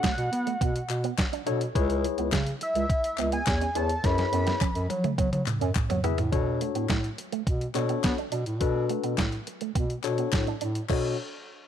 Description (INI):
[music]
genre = early-eighties boogie funk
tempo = 105 BPM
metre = 4/4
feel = straight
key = B dorian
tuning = A4 = 435 Hz
[part]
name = fat analog lead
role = melody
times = 0.0-4.9 s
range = E5 to B5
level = -30 LUFS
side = equal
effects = slapback echo
[part]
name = tine electric piano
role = accompaniment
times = 0.0-11.2 s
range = D4 to E5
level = -31 LUFS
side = moving between left 14 dB and equal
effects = auto-pan
[part]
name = electric guitar with an envelope filter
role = riff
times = 0.0-11.1 s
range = G#3 to D4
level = -35 LUFS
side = right 16 dB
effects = analog chorus
[part]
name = detuned 8-bit digital drum machine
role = drums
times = 0.0-11.0 s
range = crash cymbal, hi-hat, kick drum, snare drum, toms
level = -28 LUFS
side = equal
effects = none
[part]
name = group handclap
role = percussion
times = 0.0-11.2 s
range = none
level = -39 LUFS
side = left 13 dB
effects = none
[part]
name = mellow bass clarinet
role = bass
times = 0.2-11.2 s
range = C#2 to B3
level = -29 LUFS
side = right 1 dB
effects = none
[sound]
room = little or no reverb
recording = 1960s-style stereo with parts hard left and right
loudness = -25 LUFS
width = side -9 dB against mid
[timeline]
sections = 0.0-6.3 A section; 6.3-10.9 B section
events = drum fill 4.0-6.3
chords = 0.0 Bm7; 1.8 C#m7; 4.0 F#7sus4; 6.3 Bm7